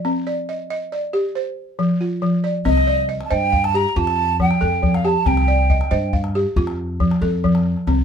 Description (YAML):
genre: west african traditional, West African string and xylophone music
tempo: 92 BPM (dotted quarters)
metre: 12/8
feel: straight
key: C dorian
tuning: A4 = 442 Hz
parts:
  - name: balafon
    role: arpeggios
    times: 0.0-8.0 s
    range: F3 to F5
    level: -20 LUFS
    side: equal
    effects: none
  - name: breathy mellow jazz flute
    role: melody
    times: 2.7-6.1 s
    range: Eb5 to Bb5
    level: -20 LUFS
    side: right 3 dB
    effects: none
  - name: upright bass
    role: bass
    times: 2.7-8.0 s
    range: C2 to G2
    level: -21 LUFS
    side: equal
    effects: none
  - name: calabash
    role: percussion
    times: 2.7-8.0 s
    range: none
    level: -24 LUFS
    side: left 2 dB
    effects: none
room: moderate small room reverb, RT60 0.5 s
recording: band playing live in one room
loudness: -17 LUFS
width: side -7 dB against mid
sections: 0.0-2.7 A section; 2.7-8.0 A section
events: none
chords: 0.0 Cm; 1.4 F5; 2.7 Cm; 4.0 F; 5.3 Cm; 6.6 F